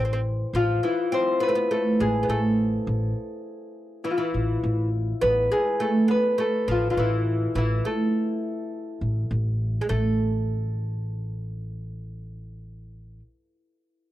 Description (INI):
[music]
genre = Arabic maqam ensemble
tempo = 103 BPM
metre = 4/4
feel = straight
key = A maqam nahawand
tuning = A4 = 439 Hz
[part]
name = Celtic harp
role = melody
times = 0.0-13.2 s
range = E4 to C5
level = -26 LUFS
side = left 2 dB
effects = none
[part]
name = oud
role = second line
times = 0.0-13.2 s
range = D3 to C4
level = -27 LUFS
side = right 2 dB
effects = none
[part]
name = upright bass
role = bass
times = 0.0-13.2 s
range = A1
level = -26 LUFS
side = equal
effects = none
[sound]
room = little or no reverb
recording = dry, close 1970s-style studio recording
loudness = -22 LUFS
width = side -14 dB against mid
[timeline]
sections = 0.0-9.9 A section; 9.9-12.2 B section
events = none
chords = none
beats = | 0.54 1.12 1.71 2.29 | 2.88 3.46 4.05 4.63 | 5.22 5.80 6.39 6.97 | 7.56 8.14 8.73 9.31 | 9.89 10.48 11.06 11.64